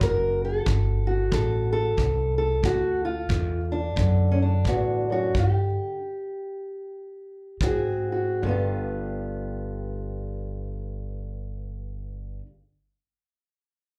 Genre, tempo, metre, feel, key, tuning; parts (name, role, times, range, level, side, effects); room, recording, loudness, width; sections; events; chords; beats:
acoustic country blues, solo or duo; 71-92 BPM; 4/4; swing 61% on 8ths; A4 = 440 Hz
fingerpicked old ladder-braced acoustic guitar; melody; 0.0-12.5 s; D2 to Bb4; -30 LUFS; equal; slapback echo
upright bass; bass; 0.0-12.4 s; F#1 to A2; -29 LUFS; equal
kick drum; drums; 0.0-7.8 s; -30 LUFS; equal
light reverb; live gig heard through the venue's PA, club reverb; -26 LUFS; mono
0.0-8.4 A section; 8.4-11.8 B section
slowing down 2.6-8.4; stop 5.4-7.6
0.0 D7; 5.4 G5; 7.6 Ab7; 8.4 G7
| 0.01 0.67 1.33 1.98 | 2.64 3.30 3.97 4.65 | 5.35 6.08 6.83 7.61 | 8.44 9.28 10.13 10.97